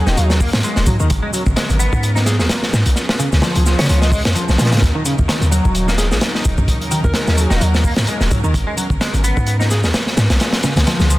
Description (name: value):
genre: breakbeat, breaks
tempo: 129 BPM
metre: 4/4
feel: swing 55% on 16ths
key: Eb minor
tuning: A4 = 442 Hz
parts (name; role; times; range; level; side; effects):
- breathy alto saxophone; melody; 0.0-9.9 s; Ab4 to Eb5; -28 LUFS; equal; old record sound, digital delay
- rich symphonic string section; sustained chords; 0.0-11.2 s; F3 to Bb4; -27 LUFS; equal; sidechain pumping
- semi-hollow electric guitar; riff; 0.0-11.2 s; Db3 to Eb4; -22 LUFS; equal; analog chorus, digital delay
- warm 808-style bass; bass; 0.0-11.2 s; Eb1 to Db3; -16 LUFS; equal; tube saturation
- crunchy breakbeat drum kit; drums; 0.1-11.2 s; hi-hat, kick drum, snare drum; -18 LUFS; equal; none
- shaker; drums; 0.1-11.2 s; none; -30 LUFS; left 1 dB; overdrive
- congas; percussion; 1.5-11.1 s; none; -27 LUFS; equal; none
room: light reverb, small room ambience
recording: dense, heavily limited modern master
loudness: -13 LUFS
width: side -17 dB against mid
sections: 0.0-11.2 A section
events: none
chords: 0.0 Ebm7; 1.1 Abm11; 3.0 Db7; 4.8 Ebm7; 8.5 Abm11; 10.4 Db7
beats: 0.17 0.64 | 1.10 1.57 2.03 2.50 | 2.96 3.43 3.89 4.36 | 4.82 5.29 5.75 6.22 | 6.68 7.15 7.61 8.08 | 8.54 9.01 9.47 9.94 | 10.40 10.87